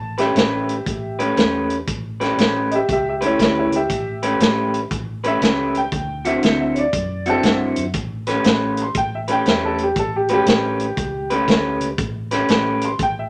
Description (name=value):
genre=electric blues shuffle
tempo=119 BPM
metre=4/4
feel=swing 65% on 8ths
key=A mixolydian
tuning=A4 = 440 Hz
part: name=warm upright piano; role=second line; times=0.0-13.3 s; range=C4 to C6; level=-25 LUFS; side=equal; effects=none
part: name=vintage muted fingered electric bass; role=bass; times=0.0-13.3 s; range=A1 to G2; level=-33 LUFS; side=equal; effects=none
part: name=electric guitar through a small old amp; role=riff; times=0.2-12.9 s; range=D3 to B4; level=-22 LUFS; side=equal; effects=none
part: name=vintage drum kit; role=drums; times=0.2-13.1 s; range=hi-hat, kick drum, snare drum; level=-23 LUFS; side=equal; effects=none
room=moderate club reverb, RT60 0.5 s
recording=none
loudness=-19 LUFS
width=mono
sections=0.0-13.3 A section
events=upright piano solo 0.0-13.3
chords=0.0 A9; 5.9 D9; 7.9 A9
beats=0.36 0.86 1.37 | 1.88 2.38 2.89 3.40 | 3.90 4.41 4.91 5.42 | 5.92 6.43 6.93 7.44 | 7.95 8.45 8.96 9.46 | 9.97 10.47 10.98 11.48 | 11.99 12.49 13.00